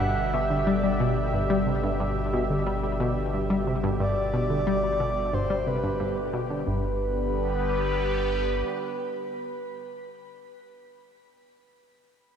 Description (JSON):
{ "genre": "ambient, sequencer-driven space music", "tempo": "90 BPM", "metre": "4/4", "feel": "straight", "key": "G major", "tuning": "A4 = 439 Hz", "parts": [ { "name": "breathy flute-like synth lead", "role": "melody", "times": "0.0-10.1 s", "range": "B4 to F#5", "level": "-30 LUFS", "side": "right 1 dB", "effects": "chorus, tremolo, shimmer reverb, ping-pong delay" }, { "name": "sweeping resonant pad", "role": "sustained chords", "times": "0.0-10.1 s", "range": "B2 to E5", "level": "-30 LUFS", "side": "equal", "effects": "chorus, shimmer reverb" }, { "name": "analog pluck", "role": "riff", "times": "0.0-7.0 s", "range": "G2 to G3", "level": "-27 LUFS", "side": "left 1 dB", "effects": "chorus, shimmer reverb, ping-pong delay" }, { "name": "warm sub bass", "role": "bass", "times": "0.0-8.6 s", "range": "G1", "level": "-32 LUFS", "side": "equal", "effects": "none" } ], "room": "wet echo chamber reverb, RT60 2.4 s", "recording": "echo-heavy mix", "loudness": "-24 LUFS", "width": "side -8 dB against mid", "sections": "0.0-6.7 A section; 6.7-9.3 B section", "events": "none", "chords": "0.0 G" }